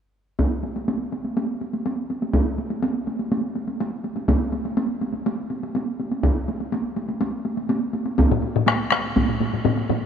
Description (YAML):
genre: japanese traditional, taiko drum ensemble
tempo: 123 BPM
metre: 4/4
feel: straight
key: none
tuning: none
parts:
  - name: solo taiko drums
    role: percussion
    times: 0.4-9.3 s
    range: none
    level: -24 LUFS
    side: equal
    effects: none
  - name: taiko ensemble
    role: percussion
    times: 0.4-10.1 s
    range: none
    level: -24 LUFS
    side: right 1 dB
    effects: none
  - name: taiko ensemble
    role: percussion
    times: 8.3-10.0 s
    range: none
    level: -21 LUFS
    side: left 3 dB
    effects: none
room: moderate huge ambient reverb, RT60 6.3 s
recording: minimal, uncompressed stereo recording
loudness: -22 LUFS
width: side -8 dB against mid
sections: 0.4-8.2 A section; 8.2-10.1 B section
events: none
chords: none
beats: | 0.39 0.88 1.36 1.85 | 2.34 2.83 3.31 3.80 | 4.29 4.78 5.26 5.75 | 6.24 6.73 7.21 7.70 | 8.19 8.68 9.16 9.65